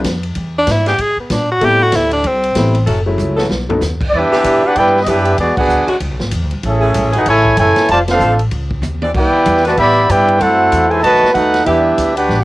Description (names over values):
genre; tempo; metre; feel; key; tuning
jazz, big band swing; 191 BPM; 4/4; swing 61% on 8ths; E minor; A4 = 440 Hz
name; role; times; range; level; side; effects
warm concert grand piano; accompaniment; 0.0-3.8 s; F#3 to A4; -19 LUFS; left 2 dB; cassette tape, plate reverb
upright bass; bass; 0.0-12.4 s; F1 to B2; -18 LUFS; equal; none
swinging big-band drum kit; drums; 0.0-12.4 s; crash cymbal, hi-hat, kick drum, ride cymbal, snare drum, toms; -24 LUFS; equal; cassette tape
bright tenor saxophone; melody; 0.6-2.9 s; B3 to G#4; -14 LUFS; equal; plate reverb
clear saxophone section; sustained chords; 0.9-11.8 s; D3 to D5; -20 LUFS; left 1 dB; cassette tape, plate reverb
warm trumpet section; melody; 4.1-12.4 s; B3 to B5; -11 LUFS; equal; none
clear trombone section; second line; 4.2-12.4 s; C3 to G4; -20 LUFS; right 2 dB; cassette tape, plate reverb
room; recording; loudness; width
moderate booth ambience, RT60 0.2 s; home recording on cassette; -11 LUFS; side -18 dB against mid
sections
0.0-4.1 A section; 4.1-12.4 B section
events
tenor saxophone solo 0.0-4.1; drum fill 3.2-3.8, 8.8-9.1; band accent 5.5, 8.0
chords
0.4 E7; 1.6 Am7; 2.9 F#m7; 3.5 B7; 4.1 Em7; 5.4 E13; 6.6 Amaj7; 7.9 Dm7; 8.5 C#sus2; 9.1 Cmaj9; 10.4 F#m7b5; 11.0 B7; 11.7 Em7